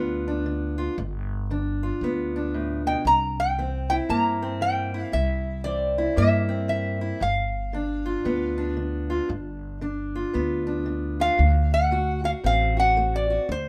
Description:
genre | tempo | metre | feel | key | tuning
acoustic country blues, solo or duo | 115 BPM | 4/4 | swing 62% on 8ths | G mixolydian | A4 = 440 Hz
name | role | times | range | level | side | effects
lap resonator guitar | melody | 0.0-13.7 s | C5 to Bb5 | -26 LUFS | equal | none
fingerpicked steel-string acoustic guitar | accompaniment | 0.0-13.7 s | G2 to F#4 | -30 LUFS | equal | none
upright bass | bass | 0.0-13.7 s | G1 to G2 | -29 LUFS | equal | none
room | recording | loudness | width
light reverb | none | -25 LUFS | mono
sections
0.0-13.7 A section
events
none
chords
0.0 G7; 3.1 C7; 7.2 G7; 11.4 D7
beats
0.45 | 0.97 1.49 2.01 2.53 | 3.05 3.57 4.09 4.61 | 5.13 5.65 6.17 6.70 | 7.22 7.74 8.26 8.78 | 9.30 9.82 10.35 10.87 | 11.39 11.91 12.44 12.96 | 13.48

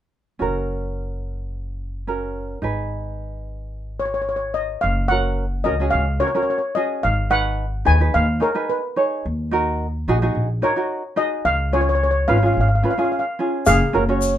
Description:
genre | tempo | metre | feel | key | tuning
calypso | 109 BPM | 4/4 | straight | F# major | A4 = 438 Hz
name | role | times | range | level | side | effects
tenor ukulele | accompaniment | 0.4-14.3 s | C#4 to C#5 | -23 LUFS | right 2 dB | none
upright bass | bass | 0.4-14.4 s | F#1 to D#2 | -22 LUFS | equal | none
steel pan | melody | 4.0-14.4 s | G#4 to G#5 | -20 LUFS | left 2 dB | none
egg shaker | percussion | 13.7-14.4 s | none | -29 LUFS | left 6 dB | none
room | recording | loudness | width
moderate small room ambience, RT60 0.5 s | minimal, uncompressed stereo recording | -18 LUFS | side -11 dB against mid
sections
0.4-4.8 A section; 4.8-13.7 B section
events
none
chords
0.4 F#; 2.6 G#m; 4.8 F#; 7.0 G#m; 9.2 D#m; 11.5 C#; 13.7 F#sus2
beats
| 0.41 0.96 1.51 2.06 | 2.62 3.17 3.72 4.27 | 4.83 5.38 5.93 6.48 | 7.03 7.59 8.14 8.69 | 9.24 9.79 10.35 10.90 | 11.45 12.01 12.56 13.11 | 13.66 14.21

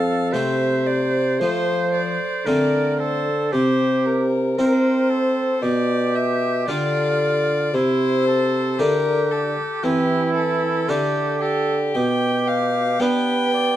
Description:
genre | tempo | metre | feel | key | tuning
classical, baroque-style sonata movement with continuo | 57 BPM | 4/4 | straight | unclear | A4 = 439 Hz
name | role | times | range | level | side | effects
rich violin | melody | 0.0-13.8 s | G4 to G5 | -25 LUFS | left 5 dB | none
warm oboe | second line | 0.0-13.8 s | E4 to D5 | -26 LUFS | right 4 dB | none
harpsichord | accompaniment | 0.0-13.8 s | F2 to C5 | -23 LUFS | equal | none
mellow bassoon | bass | 0.0-13.8 s | F2 to C4 | -22 LUFS | right 1 dB | none
room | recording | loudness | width
light reverb | dark, warm production | -18 LUFS | side -12 dB against mid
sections
0.0-13.8 A section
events
none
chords
0.0 F; 3.5 C; 5.6 G/B; 7.7 C; 12.0 G/B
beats
0.33 1.41 2.46 | 3.52 4.58 5.63 6.68 | 7.74 8.80 9.84 10.89 | 11.95 13.00

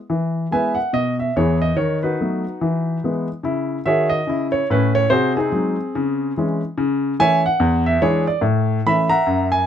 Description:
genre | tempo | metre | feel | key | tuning
jazz, stride piano | 144 BPM | 4/4 | swing 59% on 8ths | E major | A4 = 440 Hz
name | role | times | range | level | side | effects
warm baby grand piano | solo | 0.1-9.7 s | E2 to B5 | -17 LUFS | equal | none
room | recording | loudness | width
light reverb | close, detailed microphones | -17 LUFS | side -9 dB against mid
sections
0.1-9.7 A section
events
none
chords
0.1 E; 1.8 B7/D#; 2.6 E; 3.4 C#m; 5.1 G#7/B#; 5.9 C#m; 6.8 A/C#; 7.6 E7; 8.4 A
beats
| 0.10 0.52 0.94 1.36 | 1.77 2.19 2.61 3.02 | 3.44 3.86 4.27 4.69 | 5.11 5.52 5.94 6.36 | 6.77 7.19 7.60 8.02 | 8.44 8.85 9.27

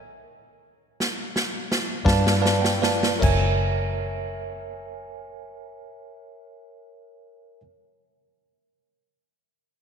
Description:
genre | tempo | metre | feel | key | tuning
slow blues | 49-62 BPM (dotted quarters) | 12/8 | straight | F# mixolydian | A4 = 439 Hz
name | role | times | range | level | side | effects
swinging big-band drum kit | drums | 1.0-3.4 s | crash cymbal, kick drum, snare drum | -24 LUFS | equal | none
bell-like tine electric piano | accompaniment | 2.0-7.6 s | A#4 to A5 | -28 LUFS | right 2 dB | medium stereo tremolo
vintage muted fingered electric bass | bass | 2.1-7.6 s | F#1 to G2 | -24 LUFS | left 1 dB | none
room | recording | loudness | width
moderate lush hall reverb, RT60 2.7 s | dreamy mix soaked in reverb | -20 LUFS | side -7 dB against mid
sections
0.0-3.2 A section; 3.2-8.1 B section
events
slowing down 0.0-3.2; stop 0.0-2.1; drum fill 1.0-3.2; tine electric piano fill 2.1-3.2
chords
0.0 N.C.; 2.1 G9; 3.2 F#9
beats
0.00 0.99 2.06 | 3.22 4.44 5.67 6.89

